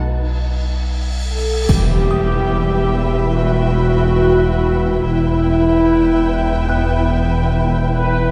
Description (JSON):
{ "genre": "cinematic, suspense film score", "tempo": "72 BPM", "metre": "4/4", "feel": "straight", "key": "E harmonic minor", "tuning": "A4 = 439 Hz", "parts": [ { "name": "warm sub bass", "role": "drone", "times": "0.0-8.3 s", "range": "E1 to B1", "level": "-24 LUFS", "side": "equal", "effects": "none" }, { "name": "cymbal swell and impact", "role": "sound effects", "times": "1.1-5.0 s", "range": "none", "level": "-26 LUFS", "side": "equal", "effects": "none" }, { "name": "dark studio viola section", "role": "accompaniment", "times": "1.3-8.3 s", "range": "B3 to B4", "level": "-21 LUFS", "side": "equal", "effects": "none" }, { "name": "warm studio violin section", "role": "melody", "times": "1.7-8.3 s", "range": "G5", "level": "-34 LUFS", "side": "equal", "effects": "none" }, { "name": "rich studio violin section", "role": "second line", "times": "1.7-8.3 s", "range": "B4 to E5", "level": "-30 LUFS", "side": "equal", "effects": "none" }, { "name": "wind-like tuned noise texture", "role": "sustained chords", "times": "2.4-8.3 s", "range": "E4 to G5", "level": "-28 LUFS", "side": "equal", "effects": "built-in reverb" }, { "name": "dark symphonic double bass section", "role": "bass", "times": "1.7-8.3 s", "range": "E1", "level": "-24 LUFS", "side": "equal", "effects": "none" }, { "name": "warm studio cello section", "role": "bass", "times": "1.7-8.3 s", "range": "E2", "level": "-25 LUFS", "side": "equal", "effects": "none" }, { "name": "triangle", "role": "percussion", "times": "1.7-3.3 s", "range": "none", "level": "-44 LUFS", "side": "equal", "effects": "none" }, { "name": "music box", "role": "texture", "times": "2.1-8.3 s", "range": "G5 to F#6", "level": "-33 LUFS", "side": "equal", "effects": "none" } ], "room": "moderate concert hall reverb, RT60 2.3 s", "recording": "dark, warm production", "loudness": "-16 LUFS", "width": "mono", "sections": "0.0-1.7 A section; 1.7-8.3 B section", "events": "break 0.0-1.7; cymbal swell 1.1-1.7; impact 1.7-5.0", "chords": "0.0 B7(no3); 1.7 Emadd9", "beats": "0.83 | 1.69 2.53 3.38 4.21 | 5.05 5.88 6.71 7.55" }